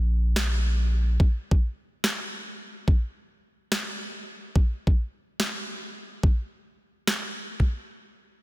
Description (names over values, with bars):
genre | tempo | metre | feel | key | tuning
future bass | 143 BPM | 4/4 | half-time | unclear | A4 = 440 Hz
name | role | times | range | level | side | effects
saturated sub bass | bass | 0.0-1.2 s | Bb1 | -22 LUFS | equal | sidechain pumping
electronic snare drum | drums | 0.4-7.2 s | none | -29 LUFS | equal | none
electronic kick drum | drums | 1.2-7.7 s | none | -20 LUFS | equal | none
room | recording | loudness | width
little or no reverb | dense, heavily limited modern master | -24 LUFS | side -18 dB against mid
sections
0.0-7.9 A section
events
filter sweep on sub bass 0.0-1.2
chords
none